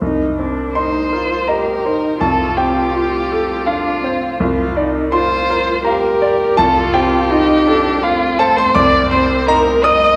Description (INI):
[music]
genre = neoclassical piano and strings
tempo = 82 BPM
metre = 3/4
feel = rubato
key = C dorian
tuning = A4 = 439 Hz
[part]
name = muted cello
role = second line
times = 0.0-10.2 s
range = C4 to G4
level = -22 LUFS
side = equal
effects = none
[part]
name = clear grand piano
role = accompaniment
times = 0.0-10.2 s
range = C2 to Eb6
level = -18 LUFS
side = equal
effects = none
[part]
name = muted violin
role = melody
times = 0.7-10.2 s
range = F4 to Eb5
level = -20 LUFS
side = equal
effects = none
[sound]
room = wet scoring stage reverb, RT60 1.5 s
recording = recorded in a church or concert hall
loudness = -15 LUFS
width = mono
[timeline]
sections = 0.0-10.2 A section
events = none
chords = 0.0 Cm7; 2.2 F/C; 4.4 Bb/C; 6.6 F/C; 8.8 Cm7